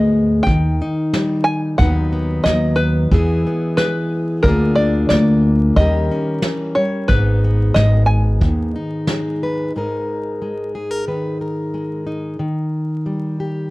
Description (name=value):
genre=acoustic folk duo or small band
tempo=90 BPM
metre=4/4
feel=straight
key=G# harmonic minor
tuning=A4 = 441 Hz
part: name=open-back banjo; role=melody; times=0.0-9.4 s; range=A#4 to G#5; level=-20 LUFS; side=equal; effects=none
part: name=fingerpicked plugged-in steel-string acoustic guitar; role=accompaniment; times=0.0-13.7 s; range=G#2 to B4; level=-20 LUFS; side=left 1 dB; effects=none
part: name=upright bass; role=bass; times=0.0-8.7 s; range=G#1 to E2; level=-15 LUFS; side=equal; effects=tube saturation
part: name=soft brush drum kit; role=drums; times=0.5-9.2 s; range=kick drum, snare drum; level=-19 LUFS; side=equal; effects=none
room=small room ambience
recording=vinyl crackle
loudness=-15 LUFS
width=side -20 dB against mid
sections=0.0-9.7 A section; 9.7-13.7 B section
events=none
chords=0.5 D#; 1.8 B/D#; 3.1 E; 4.4 A#7/D; 5.8 D#7; 7.1 G#m; 9.7 G#sus2; 12.4 D#